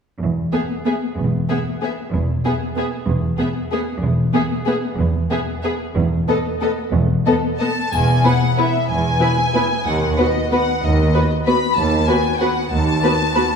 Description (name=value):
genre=classical, orchestral ballroom waltz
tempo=187 BPM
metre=3/4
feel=uneven beats, rubato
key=E major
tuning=A4 = 440 Hz
part: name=warm studio cello section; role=bass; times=0.2-13.0 s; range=D#2 to E2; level=-22 LUFS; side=right 2 dB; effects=none
part: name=warm studio double bass section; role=bass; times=0.2-13.0 s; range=E1 to D#2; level=-22 LUFS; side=equal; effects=none
part: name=warm studio violin section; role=melody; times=0.5-13.6 s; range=D#5 to B5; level=-23 LUFS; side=left 3 dB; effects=none
part: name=warm studio violin section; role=second line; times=0.5-13.4 s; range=G#4 to B4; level=-24 LUFS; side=left 2 dB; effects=none
part: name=warm studio viola section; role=accompaniment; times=0.5-13.4 s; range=B3 to F#4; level=-23 LUFS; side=right 1 dB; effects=none
part: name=triangle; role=percussion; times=7.9-8.5 s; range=none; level=-45 LUFS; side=left 5 dB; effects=none
room=wet scoring stage reverb, RT60 1.5 s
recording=heard from further back in the room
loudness=-16 LUFS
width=side -6 dB against mid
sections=0.2-7.9 A section; 7.9-13.6 B section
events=none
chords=0.2 E5; 9.9 B/D#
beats=| 0.20 0.53 0.86 | 1.17 1.49 1.82 | 2.13 2.45 2.77 | 3.08 3.40 3.73 | 4.03 4.35 4.68 | 4.99 5.31 5.64 | 5.96 6.28 6.62 | 6.93 7.25 7.60 | 7.92 8.25 8.58 | 8.89 9.21 9.55 | 9.86 10.18 10.51 | 10.83 11.14 11.46 | 11.78 12.09 12.41 | 12.73 13.04 13.37